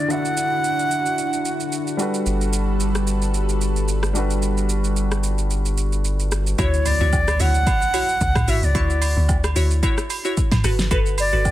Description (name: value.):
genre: amapiano.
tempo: 111 BPM.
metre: 4/4.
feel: swing 55% on 16ths.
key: D major.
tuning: A4 = 442 Hz.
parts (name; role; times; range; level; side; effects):
bright reedy concert flute; melody; 0.0-2.0, 6.6-11.5 s; B4 to F#5; -23 LUFS; right 1 dB; digital delay.
warm baby grand piano; accompaniment; 0.0-6.6 s; D3 to E5; -27 LUFS; left 1 dB; none.
lush unison pad; sustained chords; 0.0-6.5 s; D3 to B4; -27 LUFS; equal; chorus, sidechain pumping.
downlifter and impact; sound effects; 0.0-2.3, 6.7-8.8 s; none; -34 LUFS; equal; none.
deep house drum kit; drums; 0.1-11.5 s; hi-hat, kick drum, rim click, shaker, snare drum, toms; -24 LUFS; equal; none.
saturated sub bass; bass; 2.3-6.5 s; G1; -21 LUFS; equal; none.
glassy wavetable pluck; stabs; 6.6-11.4 s; E4 to C#6; -27 LUFS; left 1 dB; chorus, digital delay.
deep log drum bass; bass; 6.6-11.5 s; G1 to D2; -20 LUFS; equal; none.
agogo bells and woodblock; percussion; 6.6-11.5 s; none; -32 LUFS; right 6 dB; none.
room: little or no reverb.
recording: dense, heavily limited modern master.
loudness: -18 LUFS.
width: side -14 dB against mid.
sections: 0.0-6.6 A section; 6.6-11.5 B section.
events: kick muted 4.4-6.6; drop 6.6-11.5; impact 6.6-8.8.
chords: 0.0 Dadd9; 2.0 Gmaj9; 6.6 Dmaj9; 10.6 Gmaj9.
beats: | 0.10 0.64 1.18 1.72 | 2.26 2.80 3.35 3.88 | 4.43 4.97 5.51 6.05 | 6.59 7.13 7.67 8.21 | 8.75 9.29 9.83 10.37 | 10.91 11.45.